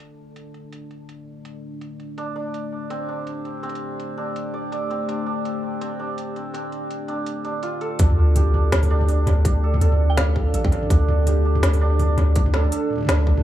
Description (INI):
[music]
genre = half-time drum and bass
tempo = 165 BPM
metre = 4/4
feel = swing 58% on 16ths, half-time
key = D minor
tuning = A4 = 442 Hz
[part]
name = deep dark ambient pad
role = sustained chords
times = 0.1-13.4 s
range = A3 to A5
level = -30 LUFS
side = equal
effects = chorus, built-in reverb, sidechain pumping
[part]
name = organic electronic drum kit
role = drums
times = 0.0-13.4 s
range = hi-hat, snare drum, toms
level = -26 LUFS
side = equal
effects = overdrive, low-pass filter on hats, low-pass filter on toms, low-pass filter on snare, low-pass filter on room, analog delay
[part]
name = santur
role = arpeggios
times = 2.2-13.4 s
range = C4 to D5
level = -28 LUFS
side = right 3 dB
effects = analog delay
[part]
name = long sustained 808-style bass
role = bass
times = 8.0-13.4 s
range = A1 to D2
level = -18 LUFS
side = equal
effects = none
[part]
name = electronic kick drum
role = drums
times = 8.0-13.4 s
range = none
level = -19 LUFS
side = equal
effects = none
[part]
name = sub drop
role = sound effects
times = 8.0-9.4 s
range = none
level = -24 LUFS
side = equal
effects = none
[part]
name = soft synth bell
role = melody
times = 10.1-10.7 s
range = F5 to G5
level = -34 LUFS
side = right 3 dB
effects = chorus, analog delay
[sound]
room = little or no reverb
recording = echo-heavy mix, small room ambience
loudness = -19 LUFS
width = side -12 dB against mid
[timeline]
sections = 0.0-8.0 A section; 8.0-13.4 B section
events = filter sweep on ambient pad 0.0-8.0; drop 8.0-13.4; impact 8.0-9.5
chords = 0.0 D5